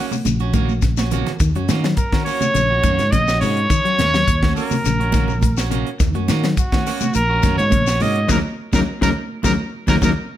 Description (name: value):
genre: afrobeat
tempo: 104 BPM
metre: 4/4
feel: straight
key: Eb dorian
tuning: A4 = 440 Hz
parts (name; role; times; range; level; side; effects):
- warm trumpet; melody; 0.0-10.1 s; Gb4 to Eb5; -21 LUFS; right 1 dB; plate reverb
- clean electric guitar; stabs; 0.0-10.1 s; Bb3 to Gb4; -27 LUFS; right 9 dB; none
- semi-hollow electric guitar; arpeggios; 0.1-10.1 s; C3 to Gb3; -24 LUFS; left 7 dB; none
- congas; percussion; 0.1-10.2 s; none; -26 LUFS; right 4 dB; none
- shekere; percussion; 0.1-10.2 s; none; -28 LUFS; left 8 dB; none
- fingered electric bass; bass; 0.3-10.1 s; Bb1 to Eb3; -21 LUFS; equal; none
- tight funk drum kit; drums; 0.3-10.2 s; hi-hat, kick drum, snare drum; -21 LUFS; equal; none
room: light reverb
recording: none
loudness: -16 LUFS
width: side -12 dB against mid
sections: 0.0-10.4 A section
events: drum fill 0.7-1.4, 8.3-10.4; band accent 8.3-10.4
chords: 0.0 Ebm7